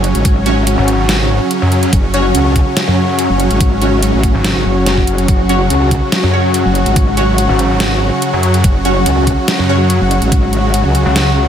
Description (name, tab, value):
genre	heavy wobble dubstep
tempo	143 BPM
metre	4/4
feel	half-time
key	unclear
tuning	A4 = 438 Hz
part	supersaw chords	sustained chords	0.0-11.5 s	C#3 to F#4	-17 LUFS	right 1 dB	sidechain pumping
part	metallic wobble bass	bass	0.0-11.0 s	F#1 to C#2	-14 LUFS	equal	chorus, overdrive
part	dubstep drum kit	drums	0.0-11.2 s	hi-hat, snare drum	-18 LUFS	equal	none
part	warbly tape-like pad	texture	0.0-11.5 s	C#4 to C#6	-18 LUFS	left 1 dB	chorus, built-in reverb, sidechain pumping
part	electronic kick drum	drums	0.2-10.4 s	none	-13 LUFS	equal	none
part	orchestra-hit-like synth stab	stabs	0.5-9.9 s	C#4 to C#5	-21 LUFS	equal	built-in reverb, ping-pong delay
part	snarling distorted saw bass	bass	0.8-11.5 s	G#1 to F#2	-14 LUFS	equal	overdrive
room	light reverb, digital ambience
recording	none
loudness	-10 LUFS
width	side -9 dB against mid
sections	0.0-11.5 A section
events	none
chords	0.0 F#5